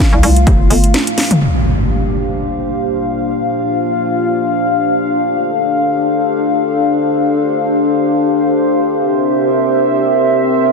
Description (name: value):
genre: bass house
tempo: 127 BPM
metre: 4/4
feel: swing 56% on 16ths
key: G dorian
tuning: A4 = 440 Hz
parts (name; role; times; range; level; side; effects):
- dark analog pad; sustained chords; 0.0-10.7 s; A3 to F5; -17 LUFS; left 2 dB; chorus, sidechain pumping
- electronic kick drum; drums; 0.0-0.6 s; none; -12 LUFS; equal; overdrive
- house drum kit; drums; 0.0-1.4 s; hi-hat, snare drum, toms; -16 LUFS; equal; overdrive, low-pass filter on hats, low-pass filter on snare, low-pass filter on toms, low-pass filter on room
- hollow knocking FM bass; bass; 0.1-0.9 s; F1 to C2; -12 LUFS; equal; overdrive, sidechain pumping
- impact; sound effects; 1.4-3.3 s; none; -17 LUFS; equal; none
- warbly tape-like pad; texture; 1.9-10.7 s; D4 to F5; -14 LUFS; left 1 dB; chorus, built-in reverb, sidechain pumping
room: moderate lush hall reverb, RT60 2.6 s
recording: dense, heavily limited modern master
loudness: -12 LUFS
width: side -4 dB against mid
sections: 0.0-1.4 A section; 1.4-10.7 B section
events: drop 0.0-1.4; break 0.9-1.4; drum fill 1.2; impact 1.4-3.3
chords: 0.0 Fadd9; 1.4 Gm7; 5.2 Dm; 9.0 C7